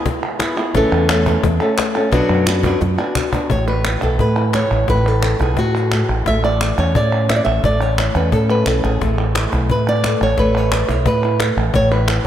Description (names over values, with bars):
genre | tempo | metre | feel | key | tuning
flamenco | 174 BPM | 4/4 | straight | unclear | A4 = 440 Hz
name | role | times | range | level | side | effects
flamenco guitar | melody | 0.0-12.3 s | A2 to E5 | -18 LUFS | equal | analog delay
cajon | percussion | 0.1-12.3 s | none | -24 LUFS | left 4 dB | none
palmas hand claps | percussion | 0.2-12.3 s | none | -24 LUFS | right 3 dB | none
mellow fretless electric bass | bass | 0.7-12.3 s | A1 to A2 | -18 LUFS | equal | analog chorus
room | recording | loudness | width
moderate lush hall reverb, RT60 2.1 s | dreamy mix soaked in reverb | -14 LUFS | side -11 dB against mid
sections
0.0-3.5 A section; 3.5-12.3 B section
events
drum fill 2.1-3.5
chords
0.0 E; 0.7 A; 2.1 Bm; 3.5 E/A; 6.3 A; 9.0 E/A; 11.7 A